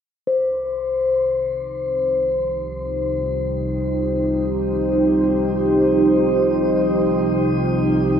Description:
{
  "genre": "ambient",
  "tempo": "free time",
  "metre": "none",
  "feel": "none",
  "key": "unclear",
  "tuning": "A4 = 439 Hz",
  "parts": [
    { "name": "deep dark ambient pad", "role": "sustained chords", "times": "2.9-8.2 s", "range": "Eb4 to C5", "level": "-18 LUFS", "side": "right 1 dB", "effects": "chorus, built-in reverb, shimmer reverb" },
    { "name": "analog drone", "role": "drone", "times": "0.9-8.2 s", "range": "C2 to C3", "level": "-29 LUFS", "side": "right 1 dB", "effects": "chorus" },
    { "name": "quartz singing bowl", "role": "texture", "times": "0.3-8.2 s", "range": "C5", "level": "-23 LUFS", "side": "left 3 dB", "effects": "shimmer reverb" }
  ],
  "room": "wet lush hall reverb, RT60 2.8 s",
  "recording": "dreamy mix soaked in reverb",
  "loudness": "-17 LUFS",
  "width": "side -8 dB against mid",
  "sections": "0.3-8.2 A section",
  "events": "fade-in on synth drone 0.3-8.2",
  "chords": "0.3 Cm"
}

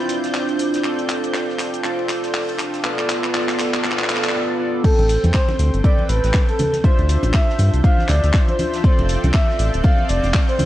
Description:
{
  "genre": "deep house",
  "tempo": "120 BPM",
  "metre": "4/4",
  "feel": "swing 58% on 16ths",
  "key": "A minor",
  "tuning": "A4 = 441 Hz",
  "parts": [
    { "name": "chorused polysynth", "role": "stabs", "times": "0.0-10.7 s", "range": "B3 to G5", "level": "-23 LUFS", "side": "equal", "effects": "sidechain pumping" },
    { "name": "analog string pad", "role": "texture", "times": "0.0-10.7 s", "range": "G6", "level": "-36 LUFS", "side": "right 2 dB", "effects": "ensemble chorus, sidechain pumping" },
    { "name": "ethereal airy pad", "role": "texture", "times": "0.0-10.7 s", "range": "B3 to C6", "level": "-30 LUFS", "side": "right 2 dB", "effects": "ensemble chorus, built-in reverb, phaser, sidechain pumping" },
    { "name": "deep house drum kit", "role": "drums", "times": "0.1-10.7 s", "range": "crash cymbal, handclaps, hi-hat, ride cymbal, shaker", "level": "-25 LUFS", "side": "left 1 dB", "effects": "overdrive, vintage 12-bit sampler grit" },
    { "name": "loose indie drum kit", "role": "drums", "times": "0.1-10.7 s", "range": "hi-hat, ride cymbal, snare drum", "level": "-38 LUFS", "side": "left 1 dB", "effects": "none" },
    { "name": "breathy flute-like synth lead", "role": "melody", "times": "4.8-10.7 s", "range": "A4 to F5", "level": "-23 LUFS", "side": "equal", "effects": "chorus, analog delay" },
    { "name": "electronic kick drum", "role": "drums", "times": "4.8-10.5 s", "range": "none", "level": "-16 LUFS", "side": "equal", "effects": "overdrive, vintage 12-bit sampler grit" },
    { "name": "round analog bass", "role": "bass", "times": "5.0-10.3 s", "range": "D1 to G2", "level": "-17 LUFS", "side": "equal", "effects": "sidechain pumping" },
    { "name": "congas", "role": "percussion", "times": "5.0-10.7 s", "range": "none", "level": "-27 LUFS", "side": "right 1 dB", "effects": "none" }
  ],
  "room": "light reverb, small room reverb",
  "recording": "cassette tape",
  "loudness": "-16 LUFS",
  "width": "side -14 dB against mid",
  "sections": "0.0-4.8 A section; 4.8-10.7 B section",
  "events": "build-up 0.0-4.8; drum fill 0.0-4.3; drop 4.8-10.7",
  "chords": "0.0 Dm9; 0.8 F6; 2.8 G9; 4.8 Am9; 6.6 Dm9; 8.8 F6"
}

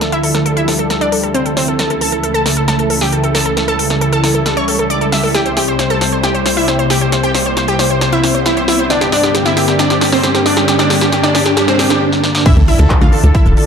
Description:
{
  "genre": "uplifting trance",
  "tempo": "135 BPM",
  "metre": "4/4",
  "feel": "straight",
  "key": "D minor",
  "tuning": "A4 = 442 Hz",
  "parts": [
    { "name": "wide unison pluck", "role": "melody", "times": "0.0-13.7 s", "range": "C4 to E6", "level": "-15 LUFS", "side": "equal", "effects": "sidechain pumping, ping-pong delay" },
    { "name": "analog string pad", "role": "sustained chords", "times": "0.0-13.7 s", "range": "C2 to D5", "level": "-17 LUFS", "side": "left 1 dB", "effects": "ensemble chorus, sidechain pumping" },
    { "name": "big-room dance drum kit", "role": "drums", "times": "0.0-13.7 s", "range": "crash cymbal, handclaps, hi-hat, snare drum", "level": "-18 LUFS", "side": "equal", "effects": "overdrive, high-pass filter on snare, sidechain pumping on hats, high-pass filter on hats, sidechain pumping on cymbals, high-pass filter on cymbals" },
    { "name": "riser and impact", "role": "sound effects", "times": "3.1-13.7 s", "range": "none", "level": "-20 LUFS", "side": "right 1 dB", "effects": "none" },
    { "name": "supersaw stab", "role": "second line", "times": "12.5-13.7 s", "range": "A5 to F6", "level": "-29 LUFS", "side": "right 1 dB", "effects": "sidechain pumping" },
    { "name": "electronic kick drum", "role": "drums", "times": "12.5-13.4 s", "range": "none", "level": "-12 LUFS", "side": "equal", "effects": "overdrive" },
    { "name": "plucky analog bass", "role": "bass", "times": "12.6-13.5 s", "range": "D1 to D2", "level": "-10 LUFS", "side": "equal", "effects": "sidechain pumping" }
  ],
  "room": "wet digital room reverb, RT60 1.1 s, digital ambience",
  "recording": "dark, warm production",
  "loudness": "-11 LUFS",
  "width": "side -7 dB against mid",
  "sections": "0.0-12.5 A section; 12.5-13.7 B section",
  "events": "build-up 0.0-12.5; drum fill 0.0-12.0, 12.1-12.5; riser 3.1-12.0; drop 12.5-13.7; impact 12.5-13.7",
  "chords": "0.0 Dmadd9; 1.8 A/C#; 5.3 C; 8.9 Gm; 12.5 Dmadd9"
}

